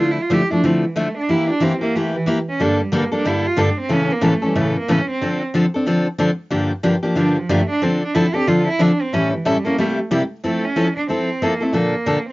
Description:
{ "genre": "jazz", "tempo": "184 BPM", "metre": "4/4", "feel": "swing 60% on 8ths", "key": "D minor", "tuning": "A4 = 440 Hz", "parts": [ { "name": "rich cello", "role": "melody", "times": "0.0-12.3 s", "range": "E3 to G4", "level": "-22 LUFS", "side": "right 2 dB", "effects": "cassette tape" }, { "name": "picked steel-string acoustic guitar", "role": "accompaniment", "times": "0.0-12.2 s", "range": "G2 to A4", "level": "-17 LUFS", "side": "left 1 dB", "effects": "cassette tape" } ], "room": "light reverb", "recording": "home recording on cassette, nothing above 7.5 kHz", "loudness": "-16 LUFS", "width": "side -20 dB against mid", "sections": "0.0-10.4 A section; 10.4-12.3 B section", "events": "cello solo 0.0-10.4", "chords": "0.0 Dmadd9; 1.3 Edim; 2.6 Gmadd9; 3.9 A; 5.2 Dm7; 6.5 Gm7; 7.8 Dm7; 9.1 A7; 9.8 C7; 10.4 Fmaj7; 11.7 Bbmaj7", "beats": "0.31 0.64 0.96 | 1.29 1.62 1.95 2.27 | 2.60 2.92 3.25 3.58 | 3.90 4.23 4.56 4.88 | 5.21 5.53 5.86 6.19 | 6.51 6.84 7.17 7.49 | 7.82 8.14 8.47 8.80 | 9.12 9.45 9.78 10.10 | 10.43 10.76 11.09 11.41 | 11.74 12.07" }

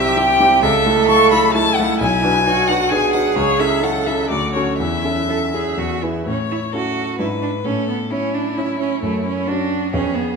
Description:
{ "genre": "quick classical-period movement for piano trio", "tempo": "131 BPM", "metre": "3/4", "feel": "rubato", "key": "A major", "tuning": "A4 = 440 Hz", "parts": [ { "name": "clear violin", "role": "melody", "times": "0.0-10.4 s", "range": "E4 to C#6", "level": "-19 LUFS", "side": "left 4 dB", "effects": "none" }, { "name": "rich cello", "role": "second line", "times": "0.0-10.4 s", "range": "A3 to A4", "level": "-20 LUFS", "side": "right 7 dB", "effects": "none" }, { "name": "warm grand piano", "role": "accompaniment", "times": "0.0-10.4 s", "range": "B1 to C#5", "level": "-20 LUFS", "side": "left 1 dB", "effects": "none" } ], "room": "moderate scoring stage reverb, RT60 1.8 s", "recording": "minimal, uncompressed stereo recording", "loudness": "-15 LUFS", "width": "side -4 dB against mid", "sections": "0.0-6.3 A section; 6.3-10.4 B section", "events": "none", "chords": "0.0 C; 0.6 A/C#; 2.0 Bm; 3.4 A/C#; 4.3 Dmaj7; 4.8 A/E; 5.8 E; 6.3 A; 7.2 E7/G#; 7.7 A; 9.0 F#5", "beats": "0.17 | 0.63 1.09 1.55 | 2.00 2.46 2.91 | 3.36 3.83 4.30 | 4.79 5.29 5.78 | 6.27 6.74 7.20 | 7.66 8.12 8.58 | 9.03 9.48 9.93" }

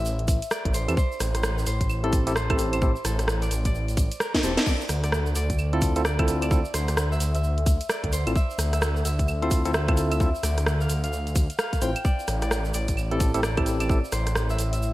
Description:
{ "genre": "UK garage, two-step garage", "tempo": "130 BPM", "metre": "4/4", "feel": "swing 62% on 16ths", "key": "D minor", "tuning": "A4 = 440 Hz", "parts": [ { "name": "concert harp", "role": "melody", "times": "0.0-14.9 s", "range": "A4 to G5", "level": "-33 LUFS", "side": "equal", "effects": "none" }, { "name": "dark detuned saw bass", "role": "bass", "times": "0.0-14.9 s", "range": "E1 to E2", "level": "-26 LUFS", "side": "equal", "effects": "none" }, { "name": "tube shaker", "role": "percussion", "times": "0.1-14.9 s", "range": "none", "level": "-38 LUFS", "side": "right 3 dB", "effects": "none" }, { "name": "garage drum kit", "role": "drums", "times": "0.2-14.8 s", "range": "claves, crash cymbal, hi-hat, rim click, snare drum", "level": "-28 LUFS", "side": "right 1 dB", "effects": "gated reverb" }, { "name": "electronic kick drum", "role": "drums", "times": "0.3-14.0 s", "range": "none", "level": "-24 LUFS", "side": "equal", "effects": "none" }, { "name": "tine electric piano", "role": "stabs", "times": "0.9-14.0 s", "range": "C4 to C5", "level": "-28 LUFS", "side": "equal", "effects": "medium stereo tremolo" } ], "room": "light reverb, digital ambience", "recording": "bright 1980s-style digital production, vinyl crackle", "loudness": "-22 LUFS", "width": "side -17 dB against mid", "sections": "0.0-14.9 A section", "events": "drum fill 4.3-4.7", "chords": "0.0 Am7; 4.7 Dm9; 12.0 Am7", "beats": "0.05 0.51 | 0.97 1.43 1.90 2.36 | 2.82 3.28 3.74 4.20 | 4.66 5.12 5.59 6.05 | 6.51 6.97 7.43 7.89 | 8.36 8.82 9.28 9.74 | 10.20 10.66 11.12 11.59 | 12.05 12.51 12.97 13.43 | 13.89 14.36 14.82" }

